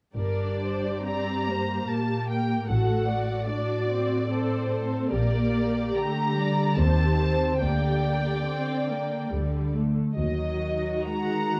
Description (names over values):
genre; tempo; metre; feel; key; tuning
classical, slow romantic movement for string orchestra; 72 BPM; 3/4; uneven beats, rubato; G minor; A4 = 440 Hz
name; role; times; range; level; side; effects
muted studio viola section; accompaniment; 0.1-11.6 s; Gb3 to A4; -32 LUFS; equal; none
muted studio cello section; bass; 0.1-11.6 s; G2 to Eb3; -31 LUFS; equal; none
muted studio double bass section; bass; 0.1-11.1 s; G1 to Eb2; -30 LUFS; equal; none
muted studio violin section; melody; 0.2-11.6 s; D5 to Bb5; -34 LUFS; equal; none
muted studio violin section; second line; 0.2-11.6 s; G4 to Gb5; -36 LUFS; equal; none
room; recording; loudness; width
moderate large studio reverb, RT60 0.9 s; dark, warm production; -26 LUFS; mono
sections
0.2-11.6 A section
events
none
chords
0.2 Gm; 2.7 D7/A; 5.1 Gm/Bb; 6.8 Cm/Eb; 7.6 Gm/D; 9.3 D5; 10.2 Ebm